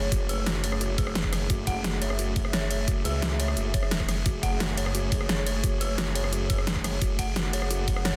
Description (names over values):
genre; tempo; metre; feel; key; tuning
dark technical drum and bass; 174 BPM; 4/4; straight; F# minor; A4 = 440 Hz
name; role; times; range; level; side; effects
dark analog pad; sustained chords; 0.0-8.2 s; A3 to F#5; -37 LUFS; equal; chorus, sidechain pumping
dark detuned synth bell; arpeggios; 0.0-8.1 s; F#4 to F#5; -38 LUFS; equal; chorus, sidechain pumping, dub echo
snarling distorted saw bass; bass; 0.0-8.2 s; F#1 to C#2; -32 LUFS; equal; distortion, tube saturation, sidechain pumping
dubstep drum kit; drums; 0.1-8.1 s; hi-hat, ride cymbal, rim click, snare drum; -32 LUFS; equal; overdrive
electronic kick drum; drums; 0.1-7.9 s; none; -30 LUFS; equal; overdrive
room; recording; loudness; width
digital ambience; dense, heavily limited modern master; -27 LUFS; mono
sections
0.0-8.2 A section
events
none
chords
0.0 F#m